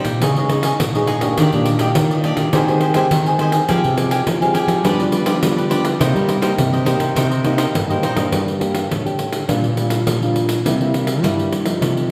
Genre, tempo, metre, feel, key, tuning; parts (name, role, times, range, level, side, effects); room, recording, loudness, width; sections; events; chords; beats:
samba and choro; 104 BPM; 4/4; straight; C minor, G minor from 8.3 s; A4 = 439 Hz
cavaquinho; accompaniment; 0.0-8.3 s; D4 to Ab5; -24 LUFS; equal
nylon-string guitar; accompaniment; 0.0-12.1 s; G2 to D5; -23 LUFS; equal
nylon-string guitar; bass; 0.0-12.1 s; G2 to G3; -22 LUFS; equal
pandeiro; percussion; 0.0-12.1 s; -24 LUFS; equal
wet recital hall reverb, RT60 1.4 s; recorded in a church or concert hall; -17 LUFS; mono
0.0-8.3 A section; 8.3-12.1 B section
0.2 Dbsus2; 1.4 Ebmaj7; 2.5 Abmaj7/Eb; 3.7 Fmadd9; 4.9 G7; 6.0 Cm7; 8.3 Gm; 9.5 Bb6; 10.7 C7
0.22 0.80 | 1.38 1.96 2.53 3.11 | 3.69 4.27 4.85 5.43 | 6.01 6.59 7.17 7.75 | 8.33 8.91 9.49 10.07 | 10.65 11.23 11.81